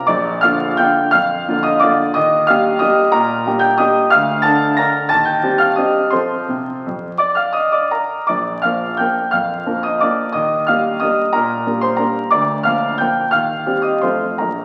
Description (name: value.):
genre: classical, piano waltz.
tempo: 157-193 BPM.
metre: 3/4.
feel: rubato.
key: Bb major.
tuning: A4 = 440 Hz.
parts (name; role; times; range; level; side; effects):
clear concert grand piano; solo; 0.0-14.6 s; Bb1 to Bb6; -16 LUFS; equal; none.
room: wet recital hall reverb, RT60 1.4 s.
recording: very old 78 rpm record, vinyl crackle.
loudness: -16 LUFS.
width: mono.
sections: 0.1-14.6 A section.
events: none.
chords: 0.1 Bb; 2.1 Eb; 4.1 Bb/D; 5.1 Cm/Eb; 6.1 F; 8.3 Bb; 10.3 Eb; 12.3 Bb/D; 13.3 Cm/Eb; 14.0 F.